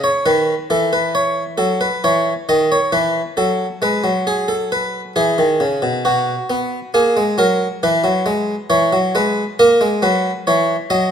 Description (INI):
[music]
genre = classical, baroque-style two-part invention for harpsichord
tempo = 68 BPM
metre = 4/4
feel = straight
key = unclear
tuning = A4 = 443 Hz
[part]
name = harpsichord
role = solo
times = 0.0-11.1 s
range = B2 to D#5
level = -14 LUFS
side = equal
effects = none
[sound]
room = moderate recital hall reverb, RT60 1.5 s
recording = none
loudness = -14 LUFS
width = side -8 dB against mid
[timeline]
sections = 0.0-11.1 A section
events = none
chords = 0.0 N.C.; 0.7 F#m7/E; 2.5 B7/D#; 4.3 E; 6.1 B5; 7.8 C#m7/E; 9.6 F#7